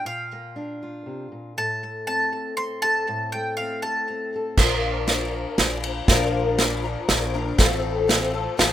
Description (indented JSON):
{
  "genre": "indie folk with a building arrangement",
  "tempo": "119 BPM",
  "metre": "3/4",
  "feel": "straight",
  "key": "Bb major",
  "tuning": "A4 = 440 Hz",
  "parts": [
    { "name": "bowl-back mandolin", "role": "melody", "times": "0.0-4.3 s", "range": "F5 to C6", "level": "-25 LUFS", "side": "equal", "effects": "digital delay" },
    { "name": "fingerpicked steel-string acoustic guitar", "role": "accompaniment", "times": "0.0-4.6 s", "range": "A2 to A4", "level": "-31 LUFS", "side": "left 2 dB", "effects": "none" },
    { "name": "picked twelve-string acoustic guitar", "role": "accompaniment", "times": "4.6-8.7 s", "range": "Bb2 to Bb4", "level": "-24 LUFS", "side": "left 4 dB", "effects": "ensemble chorus" },
    { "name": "upright bass", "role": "bass", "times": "4.6-8.7 s", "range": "A1 to Bb1", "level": "-28 LUFS", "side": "right 1 dB", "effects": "none" },
    { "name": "unplugged drum kit", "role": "drums", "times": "4.6-8.7 s", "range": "crash cymbal, kick drum, ride cymbal, snare drum", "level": "-21 LUFS", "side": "right 1 dB", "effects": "none" }
  ],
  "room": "light reverb",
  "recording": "rough home demo mix",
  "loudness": "-21 LUFS",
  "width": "side -11 dB against mid",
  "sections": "0.0-4.6 A section; 4.6-8.7 B section",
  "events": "build-up 4.6-8.7; drum fill 4.6-8.7",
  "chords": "0.0 Bb; 1.6 Am; 4.6 Bb; 7.6 F/A"
}